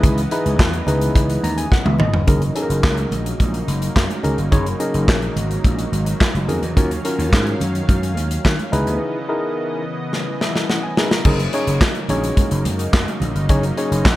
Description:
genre	early-eighties boogie funk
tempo	107 BPM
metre	4/4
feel	straight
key	F# mixolydian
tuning	A4 = 440 Hz
part	tine electric piano	accompaniment	0.0-14.0 s	C#4 to A#5	-23 LUFS	left 1 dB	overdrive
part	lush unison pad	sustained chords	0.0-14.2 s	C#3 to E#5	-27 LUFS	equal	chorus
part	vintage slap bass	bass	0.0-14.2 s	F#1 to D#3	-21 LUFS	equal	none
part	modern studio drum kit	drums	0.0-14.2 s	crash cymbal, handclaps, hi-hat, kick drum, snare drum, toms	-18 LUFS	equal	gated reverb
part	congas	percussion	0.0-14.2 s	none	-29 LUFS	right 3 dB	none
room	studio ambience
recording	none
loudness	-16 LUFS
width	side -16 dB against mid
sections	0.0-2.3 A section; 2.3-11.2 B section; 11.2-14.2 A section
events	tine electric piano fill 1.2-2.3, 10.1-11.2; drum fill 1.7-2.3, 10.1-11.2; break 9.0-11.2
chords	0.0 C#m9; 2.3 F#6; 6.8 D#m9; 8.7 C#m9; 11.2 F#6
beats	| 0.03 0.59 1.16 1.72 | 2.28 2.84 3.40 3.96 | 4.52 5.08 5.64 6.20 | 6.76 7.32 7.88 8.45 | 9.01 9.57 10.13 10.69 | 11.25 11.81 12.37 12.93 | 13.49 14.05

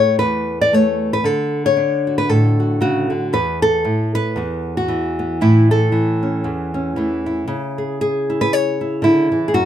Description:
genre	folk, solo fingerstyle acoustic guitar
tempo	116 BPM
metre	4/4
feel	swing 57% on 8ths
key	unclear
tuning	A4 = 440 Hz
part	nylon-string guitar	solo	0.0-9.7 s	E2 to D5	-15 LUFS	equal	none
room	light reverb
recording	close, detailed microphones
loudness	-15 LUFS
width	side -10 dB against mid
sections	0.0-7.5 A section; 7.5-9.7 B section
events	none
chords	0.0 A5; 1.2 D; 3.3 A5/E; 4.4 Esus2; 5.4 A; 7.5 C#m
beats	0.21 0.73 | 1.25 1.77 2.29 2.81 | 3.32 3.84 4.36 4.88 | 5.40 5.92 6.44 6.96 | 7.47 7.99 8.51 9.02 | 9.54

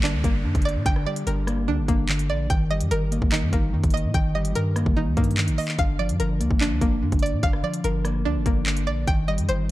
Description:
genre	hip hop, drill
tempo	146 BPM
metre	4/4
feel	half-time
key	unclear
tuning	A4 = 439 Hz
part	mellow electric guitar	accompaniment	0.0-9.7 s	D3 to Eb5	-27 LUFS	left 1 dB	none
part	string-like resonator pluck	arpeggios	0.0-9.7 s	Bb3 to G5	-28 LUFS	right 1 dB	chorus, tape echo
part	long sustained 808-style bass	bass	0.0-9.7 s	G1 to Bb2	-25 LUFS	equal	none
part	drill drum kit	drums	0.0-9.6 s	handclaps, hi-hat, kick drum, rim click	-24 LUFS	equal	none
part	downlifter	sound effects	0.0-2.5 s	none	-41 LUFS	right 2 dB	none
room	little or no reverb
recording	dark, warm production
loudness	-20 LUFS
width	side -16 dB against mid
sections	0.0-9.7 A section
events	none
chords	0.0 Gm; 2.5 Eb/G; 5.8 Bb/G; 9.1 Cm/G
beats	0.03 0.45 | 0.86 1.27 1.68 2.09 | 2.50 2.91 3.32 3.73 | 4.14 4.55 4.97 5.38 | 5.79 6.20 6.61 7.02 | 7.43 7.84 8.25 8.66 | 9.07 9.49

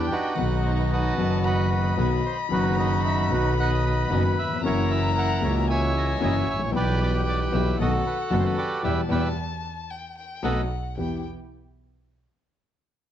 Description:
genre	tango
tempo	113 BPM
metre	4/4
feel	rubato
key	E minor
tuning	A4 = 439 Hz
part	bandoneon	melody	0.0-10.6 s	D4 to G#5	-28 LUFS	right 2 dB	none
part	warm violin	second line	0.0-11.2 s	F#5 to B5	-32 LUFS	left 5 dB	none
part	warm concert grand piano	accompaniment	0.0-11.2 s	F#1 to G4	-27 LUFS	left 4 dB	none
part	dark studio string section	stabs	0.0-11.2 s	A#3 to A4	-35 LUFS	right 2 dB	none
part	clear double bass	bass	0.0-11.2 s	F#1 to E2	-26 LUFS	right 2 dB	none
room	light reverb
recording	dark, warm production, nothing above 8.0 kHz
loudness	-22 LUFS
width	side -10 dB against mid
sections	0.0-11.0 A section; 11.0-13.1 B section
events	band accent 8.8-11.0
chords	0.4 B; 4.6 F#7; 6.7 Em/B; 7.8 B7; 8.8 Em; 10.4 B7; 11.0 Em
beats	| 0.37 0.90 1.43 1.97 | 2.50 3.04 3.57 4.09 | 4.63 5.16 5.68 6.21 | 6.74 7.26 7.79 8.32 | 8.84 9.37 9.90 10.44 | 10.98

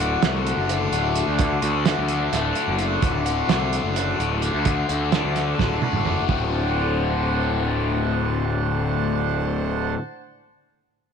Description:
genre	psychedelic rock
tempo	257 BPM (eighths)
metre	7/8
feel	straight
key	D mixolydian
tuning	A4 = 438 Hz
part	pedal harmonium	sustained chords	0.0-10.0 s	D4 to C6	-28 LUFS	right 8 dB	none
part	biting overdriven guitar	riff	0.0-10.0 s	D2 to F#4	-25 LUFS	left 13 dB	phaser
part	fuzz picked electric bass	bass	0.0-9.9 s	D1 to D2	-24 LUFS	equal	overdrive
part	cloth-damped thuddy drum kit	drums	0.0-6.4 s	hi-hat, kick drum, snare drum, toms	-24 LUFS	right 5 dB	none
room	moderate echo chamber reverb, RT60 1.4 s, small room ambience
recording	1960s-style stereo with parts hard left and right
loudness	-20 LUFS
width	side -7 dB against mid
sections	0.0-6.3 A section; 6.3-9.6 B section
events	drum fill 5.6-6.3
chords	0.0 D7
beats	0.22 0.45 0.68 0.92 1.15 | 1.38 1.62 1.85 2.08 2.32 2.55 2.78 | 3.02 3.25 3.48 3.71 3.95 4.18 4.42 | 4.65 4.88 5.12 5.35 5.58 5.82 6.05 | 6.28 6.51 6.75 6.98 7.21 7.45 7.68 | 7.92 8.15 8.38 8.62 8.85 9.08 9.32

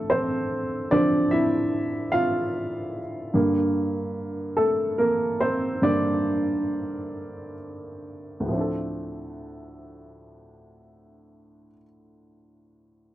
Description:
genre	pop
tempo	43-50 BPM (dotted quarters)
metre	6/8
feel	straight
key	D minor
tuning	A4 = 440 Hz
part	warm upright piano	accompaniment	0.0-13.1 s	D2 to F5	-23 LUFS	equal	none
room	moderate studio reverb, RT60 0.6 s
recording	dry, close 1970s-style studio recording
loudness	-22 LUFS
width	side -14 dB against mid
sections	0.0-8.5 A section; 8.5-11.3 B section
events	upright piano solo 0.0-8.5; slowing down 3.3-8.5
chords	0.0 Dm7; 3.3 Gm; 8.5 Dm7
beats	| 0.92 2.13 | 3.34 4.56 | 5.82 7.13 | 8.50 9.90

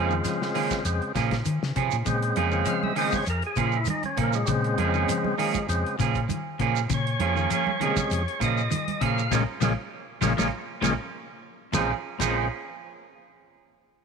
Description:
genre	afrobeat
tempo	99 BPM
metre	4/4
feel	straight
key	Bb minor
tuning	A4 = 435 Hz
part	overdriven tonewheel organ	accompaniment	0.0-12.5 s	C3 to F5	-28 LUFS	left 2 dB	slow rotary speaker
part	electric guitar at the edge of break-up	stabs	0.0-12.5 s	F3 to Ab4	-29 LUFS	right 13 dB	spring reverb
part	hollow-body short-scale fingered electric bass	bass	0.0-12.5 s	Bb1 to Eb3	-28 LUFS	left 1 dB	none
part	semi-hollow electric guitar	arpeggios	0.1-12.4 s	Bb2 to F3	-32 LUFS	left 11 dB	none
part	shekere	percussion	0.1-12.3 s	none	-35 LUFS	right 7 dB	none
part	warm soul drum kit	drums	0.2-12.3 s	crash cymbal, hi-hat, kick drum, snare drum	-34 LUFS	left 4 dB	none
part	congas	percussion	2.1-12.3 s	none	-33 LUFS	right 10 dB	none
room	light reverb, small room ambience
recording	1960s-style stereo with parts hard left and right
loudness	-23 LUFS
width	side -6 dB against mid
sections	0.0-11.7 A section; 11.7-14.0 B section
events	tonewheel organ solo 0.0-11.7; band accent 9.3-11.7; drum fill 10.5-11.7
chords	0.0 Bbm7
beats	0.25 0.85 1.46 | 2.06 2.67 3.27 3.88 | 4.48 5.09 5.69 6.30 | 6.90 7.51 8.11 8.71 | 9.32 9.93 10.53 11.13 | 11.74 12.35

